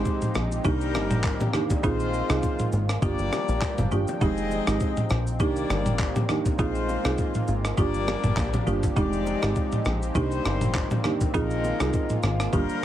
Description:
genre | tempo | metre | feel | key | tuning
afrobeats | 101 BPM | 4/4 | swing 55% on 16ths | Bb mixolydian | A4 = 440 Hz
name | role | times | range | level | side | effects
warm horn section | second line | 0.0-12.8 s | F3 to Eb5 | -31 LUFS | left 5 dB | none
folk marimba with medium mallets | accompaniment | 0.0-12.8 s | Ab3 to Ab4 | -29 LUFS | right 3 dB | none
lush unison pad | sustained chords | 0.0-12.8 s | D3 to G5 | -33 LUFS | equal | chorus
plucky analog bass | bass | 0.0-12.8 s | F1 to C2 | -28 LUFS | equal | none
breakbeat sampler-style drum kit | drums | 0.1-12.8 s | handclaps, kick drum, rim click, shaker, toms | -27 LUFS | equal | vintage 12-bit sampler grit
bongos and congas | percussion | 0.1-12.7 s | none | -36 LUFS | left 2 dB | none
room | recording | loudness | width
light reverb | heavily compressed radio sound, multiband compression | -22 LUFS | side -12 dB against mid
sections
0.0-12.8 A section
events
none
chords
0.0 Fm9; 0.6 Cm7; 1.8 Bb9sus4; 3.0 Gm7; 4.2 Fm9; 5.4 Cm7; 6.6 Bb9sus4; 7.8 Gm7; 9.0 Fm9; 10.2 Cm7; 11.3 Bb9sus4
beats
0.06 0.65 1.24 | 1.84 2.43 3.03 3.62 | 4.21 4.81 5.40 6.00 | 6.59 7.18 7.78 8.37 | 8.97 9.56 10.15 10.75 | 11.34 11.94 12.53

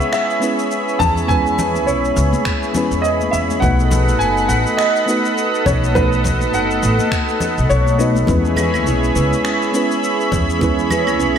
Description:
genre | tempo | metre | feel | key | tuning
sunset chillout | 103 BPM | 4/4 | swing 57% on 16ths | E major | A4 = 443 Hz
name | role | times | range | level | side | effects
dark baby grand piano | melody | 0.0-8.1 s | B4 to A5 | -20 LUFS | equal | wide subtle chorus, analog delay
mellow FM electric piano | accompaniment | 0.0-11.4 s | G#3 to B4 | -21 LUFS | moving between left 5 dB and right 5 dB | chorus, auto-pan, low-pass filter, analog delay
lush unison pad | sustained chords | 0.0-11.4 s | G#4 to B5 | -20 LUFS | equal | chorus
electronic cabasa, finger snaps and claves | drums | 0.0-11.4 s | none | -28 LUFS | left 1 dB | small room reverb
upright bass | bass | 1.0-11.4 s | F#1 to E2 | -19 LUFS | equal | none
electronic kick drum | drums | 1.0-10.7 s | none | -22 LUFS | equal | small room reverb
congas | percussion | 1.0-11.2 s | none | -26 LUFS | left 2 dB | none
kalimba | arpeggios | 8.6-11.4 s | C#4 to B4 | -25 LUFS | right 5 dB | analog delay
room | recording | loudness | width
wet plate reverb, RT60 2.4 s | dreamy mix soaked in reverb | -14 LUFS | side -8 dB against mid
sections
0.0-11.4 A section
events
none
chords
0.0 E6; 3.6 B7; 8.3 E6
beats
0.13 0.71 | 1.29 1.88 2.46 3.04 | 3.62 4.21 4.79 5.37 | 5.95 6.54 7.12 7.70 | 8.28 8.87 9.45 10.03 | 10.61 11.20

